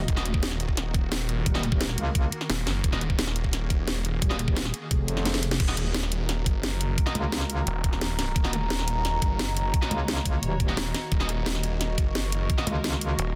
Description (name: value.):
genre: dark technical drum and bass.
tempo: 174 BPM.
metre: 4/4.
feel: straight.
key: Eb minor.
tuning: A4 = 440 Hz.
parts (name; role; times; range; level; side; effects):
swarming drone; sustained chords; 0.0-13.4 s; Eb3 to Db5; -40 LUFS; equal; built-in reverb, sidechain pumping.
metallic wobble bass; bass; 0.0-7.7, 9.9-13.2 s; Eb1 to Db2; -30 LUFS; equal; chorus.
snarling distorted saw bass; bass; 0.1-13.4 s; Eb1 to Gb1; -31 LUFS; equal; distortion, sidechain pumping.
drum and bass drum kit; drums; 0.1-13.3 s; crash cymbal, hi-hat, snare drum; -32 LUFS; equal; none.
electronic kick drum; drums; 0.1-12.6 s; none; -28 LUFS; equal; none.
thick fuzz guitar; stabs; 0.2-12.6 s; Bb3 to Eb5; -38 LUFS; equal; distortion, digital delay.
warbly tape-like pad; texture; 6.2-13.4 s; Gb4 to Db6; -37 LUFS; equal; chorus, built-in reverb, sidechain pumping.
room: light reverb.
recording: dense, heavily limited modern master.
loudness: -26 LUFS.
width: mono.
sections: 0.0-5.6 A section; 5.6-13.4 A section.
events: drop 0.0-5.6, 5.6-13.4; drum fill 5.3-5.6; band accent 5.5.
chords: 0.0 Ebm.